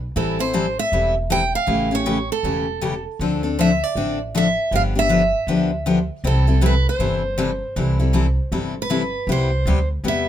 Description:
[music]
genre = acoustic string swing (jazz manouche)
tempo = 158 BPM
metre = 4/4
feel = swing 62% on 8ths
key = C major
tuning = A4 = 440 Hz
[part]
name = upright bass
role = bass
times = 0.0-10.3 s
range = E1 to E2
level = -22 LUFS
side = right 1 dB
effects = none
[part]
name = picked steel-string acoustic guitar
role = melody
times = 0.2-10.3 s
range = A4 to G5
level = -22 LUFS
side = right 2 dB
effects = none
[part]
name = picked steel-string acoustic guitar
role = accompaniment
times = 0.2-10.3 s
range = C3 to A4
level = -21 LUFS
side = left 3 dB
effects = none
[sound]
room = light reverb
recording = minimal, uncompressed stereo recording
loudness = -18 LUFS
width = side -10 dB against mid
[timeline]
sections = 0.0-9.3 A section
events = none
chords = 0.2 Am7; 1.7 A7; 3.2 Dm9; 4.7 G7; 6.2 C6; 9.3 Cmaj7

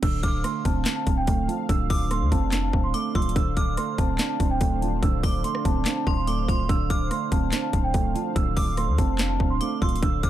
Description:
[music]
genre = hip hop, trap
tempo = 144 BPM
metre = 4/4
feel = half-time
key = D minor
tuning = A4 = 443 Hz
[part]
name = large celesta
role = melody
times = 0.0-10.3 s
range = G5 to E6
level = -30 LUFS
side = right 1 dB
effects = digital delay
[part]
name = felt-muted upright piano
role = accompaniment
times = 0.0-10.3 s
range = D3 to D4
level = -29 LUFS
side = right 8 dB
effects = none
[part]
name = warm analog pad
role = sustained chords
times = 0.0-10.3 s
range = D4 to F5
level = -36 LUFS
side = equal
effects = chorus
[part]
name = long sustained 808-style bass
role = bass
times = 0.0-10.3 s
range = D1 to D2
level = -27 LUFS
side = left 1 dB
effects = none
[part]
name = trap drum kit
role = drums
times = 0.0-10.3 s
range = crash cymbal, handclaps, hi-hat, kick drum, rim click, snare drum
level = -25 LUFS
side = left 1 dB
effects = overdrive
[part]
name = metallic FM bell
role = second line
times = 0.2-10.3 s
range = C6 to F6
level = -37 LUFS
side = left 5 dB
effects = chorus, digital delay
[sound]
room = little or no reverb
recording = dark, warm production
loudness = -22 LUFS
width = side -12 dB against mid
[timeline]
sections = 0.0-10.3 A section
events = none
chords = 0.0 Dm7

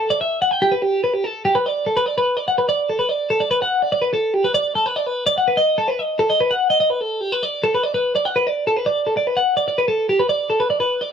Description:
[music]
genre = rock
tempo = 291 BPM (eighths)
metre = 7/8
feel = straight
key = G major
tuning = A4 = 440 Hz
[part]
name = twelve-string electric guitar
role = solo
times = 0.0-11.1 s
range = G4 to G5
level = -17 LUFS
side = equal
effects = none
[sound]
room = light reverb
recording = band playing live in one room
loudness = -17 LUFS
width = side -7 dB against mid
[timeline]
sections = 0.0-1.2 A section; 1.2-11.1 B section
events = none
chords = none

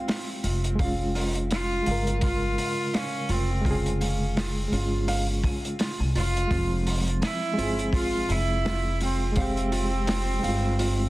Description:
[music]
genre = trip hop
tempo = 84 BPM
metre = 4/4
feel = swing 58% on 16ths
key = F harmonic minor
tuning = A4 = 443 Hz
[part]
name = rich cello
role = melody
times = 0.0-11.1 s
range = C4 to F4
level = -31 LUFS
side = right 1 dB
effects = vintage 12-bit sampler grit, tape echo
[part]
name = mellow reed electric piano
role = accompaniment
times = 0.0-11.1 s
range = Db3 to Bb4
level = -30 LUFS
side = equal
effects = fast tremolo, harmonic tremolo
[part]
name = nylon-string guitar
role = arpeggios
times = 0.0-11.0 s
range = F4 to Ab5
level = -34 LUFS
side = right 3 dB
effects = tape echo
[part]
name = crunchy breakbeat drum kit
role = drums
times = 0.1-11.0 s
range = hi-hat, kick drum, snare drum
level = -30 LUFS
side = equal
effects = none
[part]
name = upright bass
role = bass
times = 0.4-11.1 s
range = F1 to C2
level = -27 LUFS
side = equal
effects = none
[sound]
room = studio reverb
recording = dense, heavily limited modern master, vinyl crackle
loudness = -23 LUFS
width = side -18 dB against mid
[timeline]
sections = 0.0-11.1 A section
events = none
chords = 0.0 Fm; 0.8 Db/F; 6.5 Fm

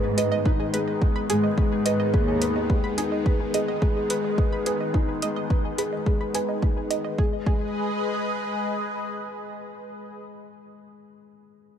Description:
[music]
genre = piano and strings electronica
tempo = 107 BPM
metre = 4/4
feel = straight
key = G# minor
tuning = A4 = 441 Hz
[part]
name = lush unison pad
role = sustained chords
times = 0.0-10.2 s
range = D#3 to D#5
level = -30 LUFS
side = equal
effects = chorus, phaser, sidechain pumping
[part]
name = analog pluck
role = arpeggios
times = 0.0-7.6 s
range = G#4 to B5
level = -32 LUFS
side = right 5 dB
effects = chorus, sidechain pumping, ping-pong delay
[part]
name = felt-muted upright piano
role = riff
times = 0.0-11.8 s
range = G#3 to B4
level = -28 LUFS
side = left 2 dB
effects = ping-pong delay
[part]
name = muted studio cello section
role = bass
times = 0.0-2.7 s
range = D#2 to G#2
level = -27 LUFS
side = equal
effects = sidechain pumping
[part]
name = electronic hi-hat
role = drums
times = 0.2-7.0 s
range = none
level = -30 LUFS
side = equal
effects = overdrive
[part]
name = electronic kick drum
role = drums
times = 0.5-7.6 s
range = none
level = -23 LUFS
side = equal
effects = overdrive
[sound]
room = light reverb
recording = none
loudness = -22 LUFS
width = side -8 dB against mid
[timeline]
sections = 0.0-7.2 A section; 7.2-9.4 B section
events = filter sweep on synth arpeggio sound 0.0-7.2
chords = 0.0 G#m

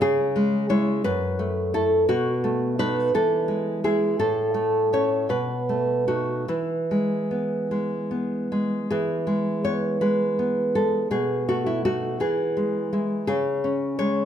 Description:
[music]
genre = romantic piece for solo classical guitar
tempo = 48-58 BPM (dotted quarters)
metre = 6/8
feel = rubato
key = E major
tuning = A4 = 438 Hz
[part]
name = nylon-string guitar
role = solo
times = 0.0-14.2 s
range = F#2 to C#5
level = -21 LUFS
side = equal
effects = none
[sound]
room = moderate recital hall reverb, RT60 1.5 s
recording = none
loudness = -21 LUFS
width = side -9 dB against mid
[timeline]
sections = 0.0-8.9 A section; 8.9-14.2 A section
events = none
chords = 0.0 C#m; 1.1 F#m7; 2.1 B7; 3.2 E; 4.2 A; 5.3 B7; 6.5 E; 11.1 B7; 12.2 E; 13.3 C#5

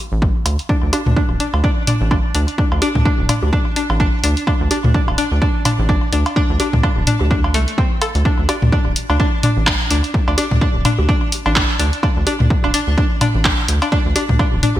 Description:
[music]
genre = minimal techno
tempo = 127 BPM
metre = 4/4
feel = swing 57% on 16ths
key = unclear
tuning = A4 = 439 Hz
[part]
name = rubbery square bass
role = bass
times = 0.1-14.8 s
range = D1 to D2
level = -18 LUFS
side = equal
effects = sidechain pumping
[part]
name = electronic kick drum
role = drums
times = 0.2-14.5 s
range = none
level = -18 LUFS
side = equal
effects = overdrive
[part]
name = punchy analog drum machine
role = drums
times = 0.5-14.7 s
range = handclaps, hi-hat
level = -20 LUFS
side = equal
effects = gated reverb
[part]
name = electronic cowbell, bongos and toms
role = percussion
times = 0.5-14.8 s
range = none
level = -21 LUFS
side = equal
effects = ping-pong delay
[part]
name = string-like resonator pluck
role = riff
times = 0.7-14.7 s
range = A3 to A4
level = -21 LUFS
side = equal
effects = chorus, sidechain pumping, digital delay
[sound]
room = light reverb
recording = bright 1980s-style digital production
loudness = -14 LUFS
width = side -13 dB against mid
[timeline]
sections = 0.0-14.8 A section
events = none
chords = 0.0 D5

